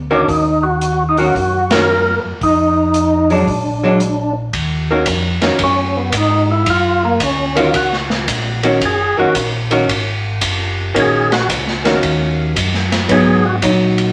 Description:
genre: soul jazz organ trio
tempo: 112 BPM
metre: 4/4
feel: swing 67% on 8ths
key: Eb minor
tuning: A4 = 440 Hz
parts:
  - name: mellow tonewheel organ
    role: bass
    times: 0.0-14.1 s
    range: Gb1 to Bb2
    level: -23 LUFS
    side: equal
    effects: slow rotary speaker
  - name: percussive tonewheel organ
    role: melody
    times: 0.1-13.6 s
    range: Bb3 to Bb4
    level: -18 LUFS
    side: equal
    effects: slow rotary speaker, overdrive, chorus vibrato
  - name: archtop guitar, miked and amplified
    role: accompaniment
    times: 0.1-14.1 s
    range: Eb3 to Gb4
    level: -18 LUFS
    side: equal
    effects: none
  - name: swinging big-band drum kit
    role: drums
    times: 0.3-14.1 s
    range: hi-hat, kick drum, ride cymbal, snare drum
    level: -22 LUFS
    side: equal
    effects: none
room: wet club reverb, RT60 0.7 s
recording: none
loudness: -15 LUFS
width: mono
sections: 0.0-4.5 A section; 4.5-14.1 B section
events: band accent 1.6; tonewheel organ solo 4.5-14.1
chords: 0.3 Ebm7; 2.4 Fm7; 3.5 Bb7b13; 4.5 Ebm7; 13.1 Abm7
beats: | 0.27 0.81 1.34 1.87 | 2.40 2.94 3.47 4.00 | 4.54 5.07 5.60 6.14 | 6.67 7.21 7.74 8.28 | 8.81 9.35 9.88 10.41 | 10.95 11.49 12.02 12.56 | 13.09 13.63

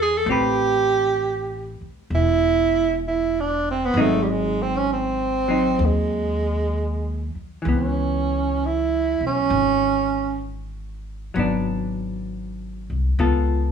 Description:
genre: jazz ballad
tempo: 65 BPM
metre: 4/4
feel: swing 68% on 8ths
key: C# minor from 7.7 s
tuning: A4 = 440 Hz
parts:
  - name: breathy tenor saxophone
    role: melody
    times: 0.0-10.4 s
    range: G3 to A4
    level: -21 LUFS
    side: right 4 dB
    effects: none
  - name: hollow-body jazz guitar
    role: accompaniment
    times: 0.0-13.7 s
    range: E3 to B4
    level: -25 LUFS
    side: left 2 dB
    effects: none
  - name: upright bass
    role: bass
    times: 0.0-13.7 s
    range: E1 to E2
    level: -25 LUFS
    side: left 1 dB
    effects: none
room: light reverb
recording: band playing live in one room, small room reverb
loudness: -19 LUFS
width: side -7 dB against mid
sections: 0.0-7.7 A section; 7.7-13.7 B section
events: tenor saxophone solo 7.7-13.7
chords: 0.3 Am9; 3.9 G#7; 7.7 C#m7; 11.3 G#m7b5; 13.2 C#aug7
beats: | 0.26 1.18 2.10 3.02 | 3.95 4.87 5.80 6.72 | 7.65 8.58 9.50 10.43 | 11.35 12.27 13.19

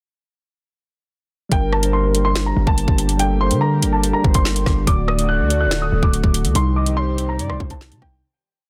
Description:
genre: hip hop, drill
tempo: 143 BPM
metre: 4/4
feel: half-time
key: G harmonic minor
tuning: A4 = 440 Hz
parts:
  - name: dark baby grand piano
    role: melody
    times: 1.5-8.2 s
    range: G5 to F#6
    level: -26 LUFS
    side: equal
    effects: low-pass filter, tape echo
  - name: gliding portamento lead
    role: second line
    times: 1.5-7.8 s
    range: Bb4 to Eb5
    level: -30 LUFS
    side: equal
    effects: chorus, phaser, tape echo
  - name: mellow tine electric piano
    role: accompaniment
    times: 1.5-8.2 s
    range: C3 to C5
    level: -26 LUFS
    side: equal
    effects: low-pass filter
  - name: warm analog pad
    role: sustained chords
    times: 1.5-8.2 s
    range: D3 to G4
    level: -32 LUFS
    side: equal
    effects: chorus
  - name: hard-hitting 808-style bass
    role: bass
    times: 1.5-8.2 s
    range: D1 to D3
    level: -22 LUFS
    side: equal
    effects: none
  - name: drill drum kit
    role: drums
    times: 1.5-8.1 s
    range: finger snaps, hi-hat, kick drum, rim click, snare drum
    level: -22 LUFS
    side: equal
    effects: none
room: little or no reverb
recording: dense, heavily limited modern master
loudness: -18 LUFS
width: mono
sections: 1.5-8.2 hook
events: fade-out 6.6-8.2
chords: 1.5 Gm; 4.9 D; 6.6 Cm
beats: | 1.52 1.94 2.35 2.77 | 3.19 3.61 4.03 4.45 | 4.87 5.29 5.71 6.13 | 6.55 6.97 7.39 7.81

